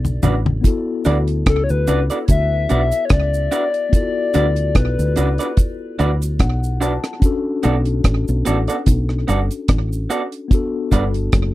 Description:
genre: lovers rock reggae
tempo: 73 BPM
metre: 4/4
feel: swing 55% on 16ths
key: D major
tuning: A4 = 440 Hz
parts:
  - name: mellow tine electric piano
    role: accompaniment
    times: 0.0-11.5 s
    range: B3 to A5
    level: -26 LUFS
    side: left 4 dB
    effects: medium stereo tremolo
  - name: fingered electric bass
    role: bass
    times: 0.0-11.5 s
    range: F#1 to D2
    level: -18 LUFS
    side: equal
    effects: none
  - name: deep reggae drum kit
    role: drums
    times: 0.0-11.5 s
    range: hi-hat, kick drum, rim click, toms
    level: -16 LUFS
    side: equal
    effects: none
  - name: cabasa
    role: percussion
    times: 0.1-11.1 s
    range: none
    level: -35 LUFS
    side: right 7 dB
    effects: none
  - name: electric guitar through a small old amp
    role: stabs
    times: 0.2-11.0 s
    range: B3 to D5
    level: -21 LUFS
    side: right 3 dB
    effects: none
  - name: reedy FM lead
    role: melody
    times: 1.5-5.6 s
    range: A4 to E5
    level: -22 LUFS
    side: left 4 dB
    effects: chorus, tape echo
room: little or no reverb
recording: dry, close 1970s-style studio recording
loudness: -16 LUFS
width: side -16 dB against mid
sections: 0.6-11.5 A section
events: drum fill 0.0-0.6; tine electric piano fill 6.0-7.2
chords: 0.0 Gmaj7 (rootless); 0.6 D6; 7.2 Bm7; 10.5 Gmaj7

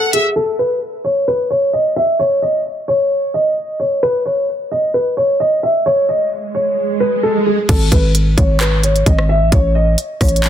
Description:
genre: hip hop, trap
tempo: 131 BPM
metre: 4/4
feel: half-time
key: unclear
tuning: A4 = 439 Hz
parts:
  - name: dark concert grand piano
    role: melody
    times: 0.0-10.5 s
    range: G#4 to E5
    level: -15 LUFS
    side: equal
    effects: low-pass filter, ping-pong delay
  - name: trap drum kit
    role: drums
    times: 0.1-0.2, 7.7-10.5 s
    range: crash cymbal, handclaps, hi-hat, kick drum, rim click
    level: -15 LUFS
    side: equal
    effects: none
  - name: swell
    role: sound effects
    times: 6.4-7.7 s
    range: none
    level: -20 LUFS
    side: right 4 dB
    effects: none
  - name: growling 808-style bass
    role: bass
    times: 7.7-10.5 s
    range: G#1 to A1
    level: -14 LUFS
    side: equal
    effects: none
room: little or no reverb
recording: dense, heavily limited modern master, low-pass filter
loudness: -13 LUFS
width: side -10 dB against mid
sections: 0.4-7.7 A section; 7.7-10.5 B section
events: break 0.0-0.4; filter sweep 0.4-7.7; swell 6.4-7.7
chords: 0.4 N.C.; 9.5 A

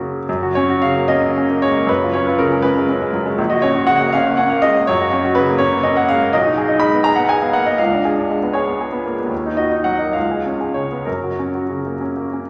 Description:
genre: classical, romantic character piece for solo piano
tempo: 63-84 BPM (dotted quarters)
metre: 6/8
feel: rubato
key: F# major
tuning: A4 = 439 Hz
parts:
  - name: clear baby grand piano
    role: solo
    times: 0.0-12.5 s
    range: A#1 to B5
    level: -17 LUFS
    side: equal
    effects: none
room: wet concert hall reverb, RT60 2.2 s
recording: none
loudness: -17 LUFS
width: mono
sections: 0.3-12.5 A section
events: none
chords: 0.3 F#; 1.9 C#7/F#; 3.4 F#/A#; 4.9 F#; 6.3 G#m/B; 7.8 C#7b9; 9.3 D#m; 10.2 C#7; 11.1 F#

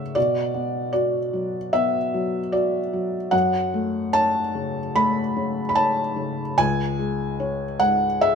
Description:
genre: neoclassical minimalist piano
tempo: 74 BPM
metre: 4/4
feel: rubato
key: F# minor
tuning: A4 = 440 Hz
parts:
  - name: felt-muted upright piano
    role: solo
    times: 0.0-8.3 s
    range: C#2 to B5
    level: -20 LUFS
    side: equal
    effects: none
room: moderate stone room reverb, RT60 1.4 s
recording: minimal, uncompressed stereo recording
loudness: -20 LUFS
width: side -6 dB against mid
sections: 0.0-8.3 A section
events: none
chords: 0.2 Bm; 3.3 F#m; 6.6 C#5

